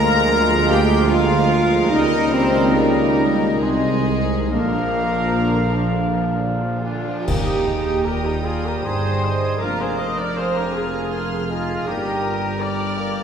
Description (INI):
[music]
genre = classical, slow romantic movement for symphony orchestra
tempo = 63-81 BPM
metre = 3/4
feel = rubato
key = Eb major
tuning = A4 = 440 Hz
[part]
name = clear studio violin section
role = melody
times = 0.0-13.2 s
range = Ab4 to F6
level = -30 LUFS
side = left 5 dB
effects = none
[part]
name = clear studio violin section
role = second line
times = 0.0-13.2 s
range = Ab4 to C6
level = -30 LUFS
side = left 4 dB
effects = none
[part]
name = mellow clarinet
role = second line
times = 0.0-13.2 s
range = Ab3 to Bb4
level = -30 LUFS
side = left 1 dB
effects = none
[part]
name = mellow cor anglais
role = second line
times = 0.0-13.2 s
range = Bb4 to G5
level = -32 LUFS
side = right 3 dB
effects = none
[part]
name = silver concert flute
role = second line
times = 0.0-13.1 s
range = D5 to Eb6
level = -31 LUFS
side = left 2 dB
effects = none
[part]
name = warm bassoon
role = accompaniment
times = 0.0-13.2 s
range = F3 to Bb3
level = -29 LUFS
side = right 1 dB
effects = none
[part]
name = warm studio viola section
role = accompaniment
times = 0.0-13.2 s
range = C3 to Eb5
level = -25 LUFS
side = right 2 dB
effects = none
[part]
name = clear trombone section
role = sustained chords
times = 0.0-6.9 s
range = Bb2 to Ab3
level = -28 LUFS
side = right 3 dB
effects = none
[part]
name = mellow French horn section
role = sustained chords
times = 0.0-12.1 s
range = Bb3 to F4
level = -26 LUFS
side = left 2 dB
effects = none
[part]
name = clear trumpet section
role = stabs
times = 0.0-13.2 s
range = D4 to F5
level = -28 LUFS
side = right 1 dB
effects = none
[part]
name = dark studio double bass section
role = bass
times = 0.0-13.2 s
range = F1 to Eb2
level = -26 LUFS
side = right 1 dB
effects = none
[part]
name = mellow tuba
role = bass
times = 0.0-13.2 s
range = F1 to Eb2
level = -25 LUFS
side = right 1 dB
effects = none
[part]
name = warm studio cello section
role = bass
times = 0.0-13.2 s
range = Eb2 to Bb4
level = -26 LUFS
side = right 1 dB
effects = none
[part]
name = cymbal swell, clash cymbals and concert bass drum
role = percussion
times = 4.5-8.8 s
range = none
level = -28 LUFS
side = left 1 dB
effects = none
[sound]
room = wet scoring stage reverb, RT60 1.9 s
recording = heard from further back in the room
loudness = -17 LUFS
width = side -7 dB against mid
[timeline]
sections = 0.0-7.3 A section; 7.3-13.2 B section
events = band accent 7.3-8.1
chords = 0.0 Bb7/D; 1.9 Eb7/Db; 3.6 Ab/C; 4.5 Bb; 7.3 Eb; 9.6 Bb7/F; 11.9 Eb/G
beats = 0.31 1.11 | 1.93 2.76 3.62 | 4.53 5.47 6.38 | 7.27 8.06 8.85 | 9.61 10.37 11.13 | 11.87 12.62